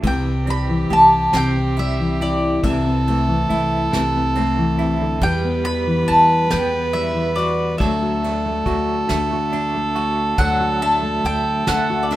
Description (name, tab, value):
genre	acoustic folk duo or small band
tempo	46 BPM (dotted quarters)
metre	6/8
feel	straight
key	unclear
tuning	A4 = 440 Hz
part	warm fiddle	second line	0.0-12.2 s	G4 to B4	-23 LUFS	right 3 dB	none
part	fingerpicked steel-string acoustic guitar	accompaniment	0.0-12.2 s	E2 to F#4	-22 LUFS	left 2 dB	none
part	electric guitar through a small old amp	arpeggios	0.0-12.2 s	E3 to G4	-29 LUFS	right 5 dB	tremolo
part	upright bass	bass	0.0-12.2 s	C2 to E2	-24 LUFS	equal	none
part	soft brush drum kit	drums	0.0-12.2 s	kick drum, ride cymbal, snare drum	-30 LUFS	equal	none
part	mandolin	melody	0.1-12.2 s	D5 to B5	-19 LUFS	equal	none
room	light reverb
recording	rough home demo mix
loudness	-16 LUFS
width	side -15 dB against mid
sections	0.0-12.2 A section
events	none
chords	0.0 C; 5.2 Emadd9; 7.8 D